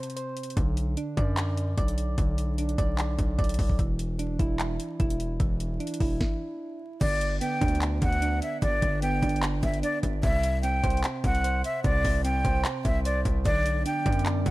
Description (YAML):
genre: hip hop, trap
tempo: 149 BPM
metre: 4/4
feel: half-time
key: G major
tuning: A4 = 440 Hz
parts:
  - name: soft electric-piano-like synth keys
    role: accompaniment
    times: 0.0-14.5 s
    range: C3 to D5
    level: -32 LUFS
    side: right 2 dB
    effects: chorus
  - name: trap drum kit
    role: drums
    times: 0.0-14.5 s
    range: crash cymbal, handclaps, hi-hat, kick drum, snare drum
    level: -28 LUFS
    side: equal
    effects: none
  - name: distorted 808-style bass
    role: bass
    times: 0.6-14.5 s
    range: E1 to F#2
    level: -28 LUFS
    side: equal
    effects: distortion
  - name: breathy jazz flute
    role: melody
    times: 7.0-14.5 s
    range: D5 to G5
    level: -29 LUFS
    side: equal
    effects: digital delay
  - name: deep dark ambient pad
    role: sustained chords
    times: 13.9-14.5 s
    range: F#3 to D4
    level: -36 LUFS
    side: right 1 dB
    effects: chorus, built-in reverb
room: little or no reverb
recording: vinyl crackle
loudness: -24 LUFS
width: side -18 dB against mid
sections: 0.0-7.0 A section; 7.0-14.5 B section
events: break 0.0-0.6; stop 6.2-7.0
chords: 0.0 N.C.; 0.6 Bm; 3.8 Dsus2/E; 7.0 G; 10.2 C; 13.5 Bm